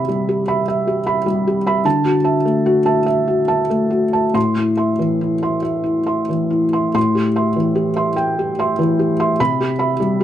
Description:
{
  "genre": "neoclassical minimalist piano",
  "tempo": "44-51 BPM (dotted quarters)",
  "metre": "6/8",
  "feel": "rubato",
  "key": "A dorian",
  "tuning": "A4 = 440 Hz",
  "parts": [
    { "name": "felt-muted upright piano", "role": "solo", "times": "0.0-10.2 s", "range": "A2 to C6", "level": "-15 LUFS", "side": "equal", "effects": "none" }
  ],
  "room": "light reverb",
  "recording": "none",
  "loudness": "-15 LUFS",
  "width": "side -11 dB against mid",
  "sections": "0.0-7.0 A section; 7.0-10.2 A section",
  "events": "none",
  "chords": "0.0 Cmaj7; 1.8 Dadd9; 4.3 Am; 7.0 Am7; 9.4 Cmaj7",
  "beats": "0.67 | 1.85 3.06 | 4.35 5.63 | 6.96 8.17 | 9.39"
}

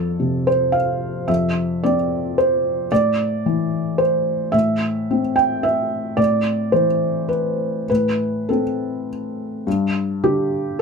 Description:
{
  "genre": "neoclassical minimalist piano",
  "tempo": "100-113 BPM",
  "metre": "3/4",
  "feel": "rubato",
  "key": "A minor",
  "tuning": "A4 = 439 Hz",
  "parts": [
    { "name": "felt-muted upright piano", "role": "solo", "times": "0.0-10.8 s", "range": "F2 to G5", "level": "-18 LUFS", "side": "equal", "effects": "none" }
  ],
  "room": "light reverb",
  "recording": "none",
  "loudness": "-18 LUFS",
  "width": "side -5 dB against mid",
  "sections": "0.0-9.7 A section; 9.7-10.8 A section",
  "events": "none",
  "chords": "0.0 Dm7/F; 2.9 Am; 9.7 G5",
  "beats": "0.20 0.74 | 1.28 1.83 2.37 | 2.91 3.44 3.99 | 4.54 5.09 5.64 | 6.18 6.73 7.30 | 7.89 8.49 9.07 | 9.66 10.23 10.81"
}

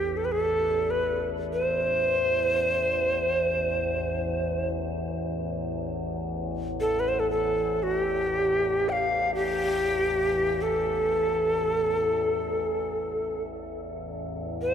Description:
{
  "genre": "world meditative, free-time meditation music",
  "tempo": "free time",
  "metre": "none",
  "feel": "none",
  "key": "A minor",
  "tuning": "A4 = 439 Hz",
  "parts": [
    { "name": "breathy bright Native American-style cedar flute", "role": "melody", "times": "0.0-14.7 s", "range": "G4 to G5", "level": "-25 LUFS", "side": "equal", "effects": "diffuse ambient delay" },
    { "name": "overtone-sweeping drone", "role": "drone", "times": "0.0-14.7 s", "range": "A1 to E2", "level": "-32 LUFS", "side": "left 2 dB", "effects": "chorus, built-in reverb" }
  ],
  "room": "wet cathedral reverb, RT60 6.0 s",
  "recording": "none",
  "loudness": "-24 LUFS",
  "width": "side -8 dB against mid",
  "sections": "0.0-14.7 A section",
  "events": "none",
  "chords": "none",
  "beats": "free time"
}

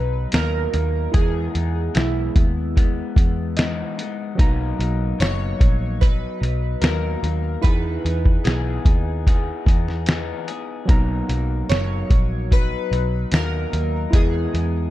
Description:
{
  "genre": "indie pop, bedroom pop",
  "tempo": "74 BPM",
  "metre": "4/4",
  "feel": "straight",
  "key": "B major",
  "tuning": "A4 = 440 Hz",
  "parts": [
    { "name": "chorused retro synth keys", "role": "melody", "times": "0.0-14.9 s", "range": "E4 to C#5", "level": "-29 LUFS", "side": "right 2 dB", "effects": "lush chorus, tape echo" },
    { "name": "electric guitar through a small old amp", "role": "accompaniment", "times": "0.0-14.9 s", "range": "B2 to G#4", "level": "-30 LUFS", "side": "left 7 dB", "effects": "lush chorus, vibrato effect" },
    { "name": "tine electric piano", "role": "accompaniment", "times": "0.0-14.9 s", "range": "F#3 to A#5", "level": "-30 LUFS", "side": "right 2 dB", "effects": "none" },
    { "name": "vintage muted picked electric bass", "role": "bass", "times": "0.0-14.9 s", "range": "F#1 to E2", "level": "-23 LUFS", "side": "equal", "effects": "none" },
    { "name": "lo-fi sampler-style drum kit", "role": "drums", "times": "0.3-14.7 s", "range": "hi-hat, kick drum, snare drum", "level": "-17 LUFS", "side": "equal", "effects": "none" }
  ],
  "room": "little or no reverb",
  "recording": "none",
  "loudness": "-18 LUFS",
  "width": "side -15 dB against mid",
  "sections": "0.0-14.9 A section",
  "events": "tine electric piano fill 3.2-4.4",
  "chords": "0.0 Bmaj7; 1.1 Emaj7; 4.4 Bmaj7; 7.6 Emaj7; 10.9 Bmaj7; 14.1 Emaj7",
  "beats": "0.34 | 1.15 1.96 2.77 3.58 | 4.39 5.21 6.02 6.83 | 7.64 8.45 9.26 10.07 | 10.88 11.70 12.51 13.32 | 14.13"
}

